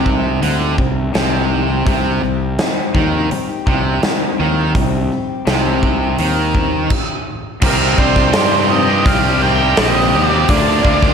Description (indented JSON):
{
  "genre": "classic rock",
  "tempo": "83 BPM",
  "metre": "4/4",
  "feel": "straight",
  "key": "C minor",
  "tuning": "A4 = 441 Hz",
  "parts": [
    { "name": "picked steel-string acoustic guitar", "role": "accompaniment", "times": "0.0-11.1 s", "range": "C3 to Bb4", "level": "-24 LUFS", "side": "left 6 dB", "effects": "slapback echo" },
    { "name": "cranked stack guitar", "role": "riff", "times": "0.0-11.1 s", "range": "C3 to G4", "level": "-22 LUFS", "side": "left 9 dB", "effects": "overdrive, slapback echo" },
    { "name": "distorted electric guitar", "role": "riff", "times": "0.0-11.1 s", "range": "C3 to G4", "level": "-20 LUFS", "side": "right 10 dB", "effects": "overdrive" },
    { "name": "fuzz fingered electric bass", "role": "bass", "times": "0.0-11.1 s", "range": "Bb1 to G2", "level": "-19 LUFS", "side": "equal", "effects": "overdrive" },
    { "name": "big rock drum kit", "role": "drums", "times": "0.1-11.1 s", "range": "crash cymbal, hi-hat, kick drum, snare drum", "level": "-18 LUFS", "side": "equal", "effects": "none" },
    { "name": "octave-fuzz lead guitar", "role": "melody", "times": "7.6-11.1 s", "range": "Bb4 to G5", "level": "-18 LUFS", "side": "equal", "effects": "wah, distortion, slapback echo" },
    { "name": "lead guitar through a small cranked amp", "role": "second line", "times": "7.6-11.1 s", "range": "C4 to Bb4", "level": "-22 LUFS", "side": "right 2 dB", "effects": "overdrive, slapback echo, tape echo" }
  ],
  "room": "moderate lush hall reverb, RT60 2.2 s",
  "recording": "big arena sound",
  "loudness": "-13 LUFS",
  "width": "side -6 dB against mid",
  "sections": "0.0-7.6 A section; 7.6-11.1 B section",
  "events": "stop 6.9-7.6",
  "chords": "0.0 Cm; 7.6 Cmadd9; 10.5 Bb/D"
}